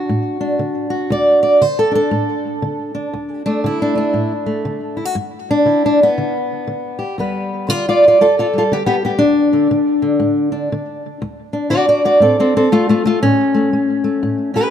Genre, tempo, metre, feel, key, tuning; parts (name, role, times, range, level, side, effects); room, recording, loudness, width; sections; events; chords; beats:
acoustic country blues, solo or duo; 119 BPM; 4/4; swing 61% on 8ths; D major; A4 = 438 Hz
fingerpicked steel-string acoustic guitar; solo; 0.0-14.7 s; D2 to D5; -14 LUFS; equal; tape echo
moderate recital hall reverb, RT60 1.8 s; close, detailed microphones; -13 LUFS; side -9 dB against mid
0.0-14.7 A section
0.0 D; 5.1 G; 9.2 D; 13.2 A
0.09 0.59 | 1.10 1.61 2.11 2.62 | 3.12 3.63 4.14 4.64 | 5.15 5.66 6.16 6.67 | 7.17 7.68 8.19 8.69 | 9.20 9.70 10.21 10.71 | 11.22 11.72 12.23 12.73 | 13.24 13.74 14.24